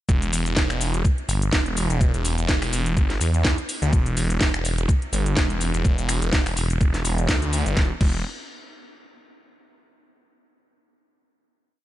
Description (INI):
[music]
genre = bass house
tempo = 125 BPM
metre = 4/4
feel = swing 56% on 16ths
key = E minor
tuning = A4 = 440 Hz
[part]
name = phased detuned saw bass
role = bass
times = 0.1-8.2 s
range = E1 to E2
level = -23 LUFS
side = equal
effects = phaser, tube saturation, sidechain pumping
[part]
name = electronic kick drum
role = drums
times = 0.1-8.1 s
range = none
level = -21 LUFS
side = equal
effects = small room reverb
[part]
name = garage drum kit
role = drums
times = 0.1-8.1 s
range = cabasa, crash cymbal, finger snaps, hi-hat, snare drum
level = -27 LUFS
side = equal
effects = small room reverb
[sound]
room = little or no reverb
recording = nothing above 10.5 kHz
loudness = -20 LUFS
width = side -14 dB against mid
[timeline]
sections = 0.1-7.8 drop; 7.8-9.7 final chord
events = drop 0.1-7.8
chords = none